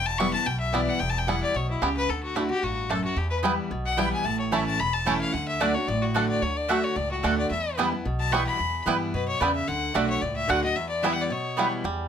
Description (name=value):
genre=bluegrass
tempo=221 BPM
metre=4/4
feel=straight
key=E dorian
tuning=A4 = 442 Hz
part: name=clear fiddle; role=melody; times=0.0-11.7 s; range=E4 to C#6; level=-28 LUFS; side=left 4 dB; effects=none
part: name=picked steel-string acoustic guitar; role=accompaniment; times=0.0-12.1 s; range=E2 to F#4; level=-29 LUFS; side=equal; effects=none
part: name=upright bass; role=bass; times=0.0-12.1 s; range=E1 to G2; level=-32 LUFS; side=equal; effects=none
part: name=bluegrass banjo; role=melody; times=0.2-12.1 s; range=G3 to E4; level=-28 LUFS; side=right 4 dB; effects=none
part: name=mandolin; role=stabs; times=3.4-11.7 s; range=A3 to A5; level=-27 LUFS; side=right 4 dB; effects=none
room=light reverb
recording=none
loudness=-23 LUFS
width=side -8 dB against mid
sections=0.0-11.8 A section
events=none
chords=0.0 Em; 2.1 D; 3.2 Em; 4.3 A; 5.3 D; 7.5 Em; 9.7 D; 10.8 Em